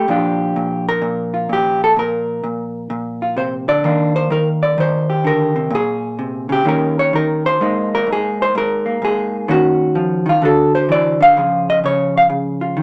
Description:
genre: solo jazz.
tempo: 128 BPM.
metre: 4/4.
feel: swing 66% on 8ths.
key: Bb major.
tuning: A4 = 440 Hz.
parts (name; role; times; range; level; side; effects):
vintage hollow-body jazz guitar; solo; 0.0-12.8 s; Ab2 to F5; -17 LUFS; equal; none.
room: moderate studio reverb, RT60 0.7 s.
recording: none.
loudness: -17 LUFS.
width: mono.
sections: 0.0-3.8 A section; 3.8-12.8 B section.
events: none.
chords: 0.1 Bb6; 3.8 Ebmaj7; 5.7 Bbm7; 6.7 Eb7; 7.6 Absus2; 9.5 Ebm7; 10.4 D9; 11.4 Db.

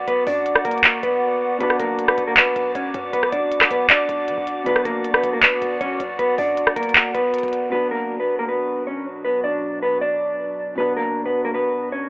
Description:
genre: hip hop, trap.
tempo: 157 BPM.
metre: 4/4.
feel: half-time.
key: B harmonic minor.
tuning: A4 = 440 Hz.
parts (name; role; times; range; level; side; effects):
warbly tape-like pad; sustained chords; 0.0-12.1 s; B2 to D6; -28 LUFS; equal; chorus, built-in reverb.
short 808-style bass; bass; 0.0-7.7 s; A#1 to F#3; -40 LUFS; equal; none.
mellow electric guitar; melody; 0.1-12.1 s; A#3 to D5; -20 LUFS; equal; digital delay.
trap drum kit; drums; 0.1-7.6 s; handclaps, hi-hat, rim click; -15 LUFS; equal; vintage 12-bit sampler grit.
felt-muted upright piano; accompaniment; 1.6-12.1 s; B2 to D4; -31 LUFS; equal; none.
room: light reverb, digital ambience.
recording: telephone sound.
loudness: -17 LUFS.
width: side -26 dB against mid.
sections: 0.0-7.7 A section; 7.7-12.1 B section.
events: break 1.2-1.6.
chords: 0.0 Bm.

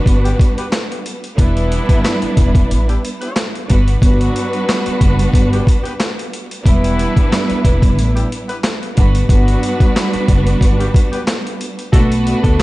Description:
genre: hip hop, boom-bap hip-hop.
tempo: 91 BPM.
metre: 4/4.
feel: swing 55% on 16ths.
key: E minor.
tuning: A4 = 441 Hz.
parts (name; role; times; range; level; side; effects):
warm studio string section; accompaniment; 0.0-12.6 s; G3 to B4; -19 LUFS; right 1 dB; high-pass filter, low-pass filter.
upright bass; bass; 0.1-12.6 s; E1 to D2; -16 LUFS; equal; none.
boom bap sampler-style drum kit; drums; 0.1-12.6 s; handclaps, hi-hat, kick drum, snare drum; -14 LUFS; equal; none.
warm horn section; stabs; 0.2-12.1 s; E3 to B4; -28 LUFS; left 2 dB; high-pass filter, low-pass filter, ping-pong delay.
mellow electric guitar; melody; 11.9-12.6 s; F#4 to A4; -22 LUFS; left 1 dB; spring reverb, high-pass filter, low-pass filter.
room: little or no reverb.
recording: vinyl crackle, nothing above 10.3 kHz.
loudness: -12 LUFS.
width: side -19 dB against mid.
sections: 0.0-11.9 A section.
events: none.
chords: 0.0 Gmaj7; 1.4 Em7; 3.7 Gmaj7; 6.7 Em7; 9.0 Gmaj7; 11.9 Bm7.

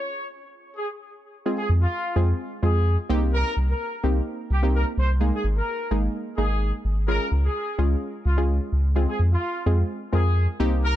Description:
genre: dance-pop.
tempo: 128 BPM.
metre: 4/4.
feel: straight.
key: F minor.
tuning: A4 = 440 Hz.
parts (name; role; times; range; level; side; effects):
warm horn section; melody; 0.0-11.0 s; F4 to Db5; -30 LUFS; equal; low-pass filter, dub echo.
glassy wavetable pluck; accompaniment; 0.0-11.0 s; Ab3 to Bb4; -28 LUFS; equal; chorus, low-pass filter.
round analog bass; bass; 1.7-10.9 s; Ab1 to F2; -21 LUFS; equal; none.
room: small room ambience.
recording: dark, warm production.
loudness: -21 LUFS.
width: side -13 dB against mid.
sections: 0.0-1.5 A section; 1.5-11.0 B section.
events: filter sweep 0.0-1.5; drop 1.5-11.0.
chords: 0.0 Db; 1.5 Fm; 3.1 Cm7; 5.2 Absus2; 7.1 Db; 9.0 Fm.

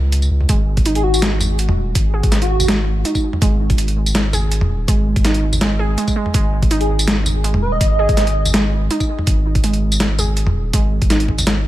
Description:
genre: half-time drum and bass.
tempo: 164 BPM.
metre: 4/4.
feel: swing 54% on 16ths, half-time.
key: unclear.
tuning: A4 = 440 Hz.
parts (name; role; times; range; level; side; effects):
saturated sub bass; bass; 0.0-11.7 s; D#1 to C#2; -18 LUFS; equal; none.
boom bap sampler-style drum kit; drums; 0.1-11.5 s; hi-hat, snare drum, tambourine, toms; -20 LUFS; equal; small room ambience.
warbly dusty pluck; arpeggios; 0.5-11.2 s; G#3 to G#4; -23 LUFS; right 2 dB; chorus, tape echo.
electronic kick drum; drums; 0.5-11.4 s; none; -17 LUFS; equal; overdrive, small room ambience.
airy dreamy lead; melody; 1.0-2.7, 6.8-8.4 s; F#4 to D#5; -23 LUFS; equal; chorus, tape echo.
room: digital ambience.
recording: lossy compression artefacts.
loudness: -14 LUFS.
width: side -14 dB against mid.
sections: 0.0-11.7 A section.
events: break 0.0-0.5.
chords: 0.0 G#5.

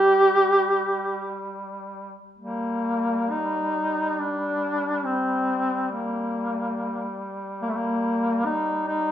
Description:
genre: caucasian folk, Caucasian lament.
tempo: 64-71 BPM.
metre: 3/4.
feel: rubato.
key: G minor.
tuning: A4 = 439 Hz.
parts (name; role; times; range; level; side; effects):
warm duduk; melody; 0.0-9.1 s; A3 to G4; -22 LUFS; equal; none.
warm duduk; drone; 0.0-9.1 s; G3; -32 LUFS; equal; none.
room: wet recital hall reverb, RT60 1.5 s.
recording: minimal, uncompressed stereo recording.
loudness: -22 LUFS.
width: side -10 dB against mid.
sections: 0.0-2.4 A section; 2.4-9.1 B section.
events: none.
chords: none.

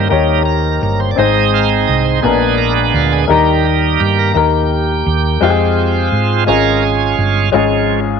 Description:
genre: slow gospel.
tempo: 57 BPM (dotted quarters).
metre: 6/8.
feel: straight.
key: unclear.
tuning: A4 = 440 Hz.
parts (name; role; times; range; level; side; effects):
warm baby grand piano; accompaniment; 0.0-8.2 s; Ab2 to Db5; -15 LUFS; left 9 dB; none.
bright tonewheel organ; sustained chords; 0.0-8.0 s; F3 to F5; -16 LUFS; right 12 dB; overdrive, slow rotary speaker.
hollow-body short-scale fingered electric bass; bass; 0.0-8.2 s; G1 to Ab2; -16 LUFS; right 2 dB; none.
room: light reverb, studio reverb.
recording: 1960s-style stereo with parts hard left and right.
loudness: -11 LUFS.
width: side -6 dB against mid.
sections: 0.0-7.5 A section.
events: tonewheel organ solo 0.0-7.5.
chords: 0.0 Eb; 1.2 Ab; 2.2 Bb7b9; 3.3 Eb; 5.4 Fm; 6.5 Db/Ab; 7.5 Db.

